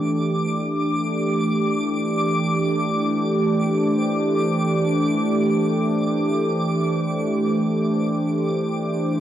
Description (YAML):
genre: ambient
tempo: free time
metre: none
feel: none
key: unclear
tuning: A4 = 440 Hz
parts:
  - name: warm analog pad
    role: sustained chords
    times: 0.0-9.2 s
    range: E3 to C5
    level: -20 LUFS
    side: right 1 dB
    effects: chorus
  - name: twinkling granular texture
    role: texture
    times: 0.0-9.2 s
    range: D6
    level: -29 LUFS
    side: left 2 dB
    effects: built-in reverb
room: wet concert hall reverb, RT60 2.2 s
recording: worn, warbling old tape, cassette tape, warbly pitch drift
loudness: -19 LUFS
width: side -11 dB against mid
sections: 0.0-9.2 A section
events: fade-out on synth texture 0.0-9.2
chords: 0.0 Em7; 3.1 C6